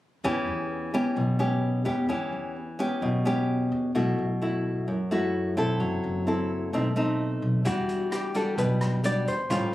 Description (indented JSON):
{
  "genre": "bossa nova",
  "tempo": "130 BPM",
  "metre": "4/4",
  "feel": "straight",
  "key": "E dorian",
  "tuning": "A4 = 440 Hz",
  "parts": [
    { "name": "nylon-string guitar", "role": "accompaniment", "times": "0.2-9.7 s", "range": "F#2 to A4", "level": "-26 LUFS", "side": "left 1 dB", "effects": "none" },
    { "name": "upright bass", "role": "bass", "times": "0.2-9.6 s", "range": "F#1 to F#2", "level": "-30 LUFS", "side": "equal", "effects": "none" },
    { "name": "hollow-body jazz guitar", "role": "melody", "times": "7.7-9.7 s", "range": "F#4 to D5", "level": "-29 LUFS", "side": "left 2 dB", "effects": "none" },
    { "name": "vintage drum kit", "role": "drums", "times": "7.7-9.6 s", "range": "hi-hat, kick drum, rim click", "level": "-36 LUFS", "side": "equal", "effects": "none" }
  ],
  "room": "little or no reverb",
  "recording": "recorded on a phone in the room, studio reverb, compression",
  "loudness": "-24 LUFS",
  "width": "side -15 dB against mid",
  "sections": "0.2-7.6 A section; 7.6-9.7 B section",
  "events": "none",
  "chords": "0.2 Em6; 3.9 B7sus4; 5.8 F#m7b5; 6.7 B7b9; 7.6 Em9"
}